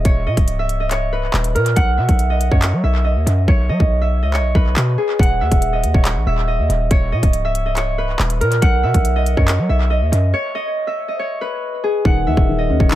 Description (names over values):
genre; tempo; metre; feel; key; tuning
hip hop, drill; 140 BPM; 4/4; half-time; Eb phrygian; A4 = 440 Hz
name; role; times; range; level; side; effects
Celtic harp; melody; 0.0-13.0 s; Ab4 to F#5; -20 LUFS; right 1 dB; dub echo
hard-hitting 808-style bass; bass; 0.0-13.0 s; Db1 to F#3; -18 LUFS; equal; none
drill drum kit; drums; 0.1-13.0 s; handclaps, hi-hat, kick drum; -17 LUFS; equal; dub echo
felt-muted upright piano; accompaniment; 12.0-13.0 s; Eb3 to Db4; -20 LUFS; left 5 dB; dub echo
room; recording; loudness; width
little or no reverb; echo-heavy mix; -15 LUFS; side -14 dB against mid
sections
0.0-13.0 A section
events
hi-hats muted 3.5-5.2, 12.1-13.0; break 10.3-12.1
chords
0.0 Eb5; 1.8 B; 5.2 Eb5; 8.6 B; 12.1 Eb5